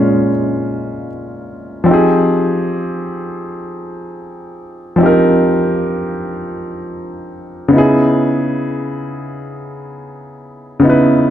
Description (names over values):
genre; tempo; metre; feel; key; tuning
R&B; free time; none; none; F minor; A4 = 441 Hz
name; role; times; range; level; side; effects
warm concert grand piano; solo; 0.0-11.3 s; Bb2 to F5; -14 LUFS; equal; none
room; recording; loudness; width
moderate plate reverb, RT60 2.8 s; dark, warm production; -12 LUFS; side -11 dB against mid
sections
0.0-1.9 A section; 1.9-11.3 B section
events
grand piano solo 0.0-1.9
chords
0.0 Bbm7; 1.9 Fm9; 7.7 Dbm9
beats
free time